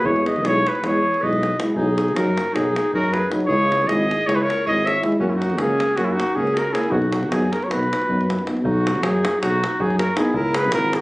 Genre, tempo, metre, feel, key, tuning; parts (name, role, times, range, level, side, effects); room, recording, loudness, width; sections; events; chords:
balkan folk, Balkan brass band; 315 BPM (eighths); 9/8; straight; B major; A4 = 440 Hz
mellow trumpet; melody; 0.0-11.0 s; E4 to E5; -21 LUFS; equal
warm clarinet; second line; 0.0-11.0 s; C#4 to C#5; -28 LUFS; equal
mellow French horn; accompaniment; 0.0-10.3 s; C#4 to E4; -27 LUFS; left 1 dB
mellow euphonium; accompaniment; 0.0-10.3 s; F#3 to B3; -27 LUFS; right 1 dB
mellow tuba; bass; 0.0-10.9 s; G#1 to F#2; -23 LUFS; equal
davul; percussion; 0.1-11.0 s; -29 LUFS; left 1 dB
light reverb; recorded on a phone in the room, club reverb, compression, nothing above 10.3 kHz; -18 LUFS; side -21 dB against mid
0.0-8.6 A section; 8.6-11.0 A section
0.0 E; 1.8 B; 3.5 C#m; 5.2 F#; 6.9 B; 10.3 C#m